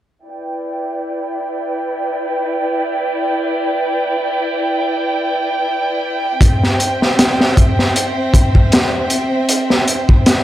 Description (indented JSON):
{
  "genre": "trip hop",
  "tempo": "78 BPM",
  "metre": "4/4",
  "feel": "swing 55% on 16ths",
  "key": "E minor",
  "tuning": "A4 = 440 Hz",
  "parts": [
    { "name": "warm studio violin section", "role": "sustained chords", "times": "0.3-10.4 s", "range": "C4 to G5", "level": "-18 LUFS", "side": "right 1 dB", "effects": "low-pass filter" },
    { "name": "crunchy breakbeat drum kit", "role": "drums", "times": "6.4-10.4 s", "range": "hi-hat, kick drum, snare drum", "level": "-12 LUFS", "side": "equal", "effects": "none" }
  ],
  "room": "light reverb",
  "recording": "none",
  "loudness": "-14 LUFS",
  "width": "side -13 dB against mid",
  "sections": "0.3-10.4 A section",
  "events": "filter sweep on violin section 0.3-10.4",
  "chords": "0.3 Em7; 6.4 C"
}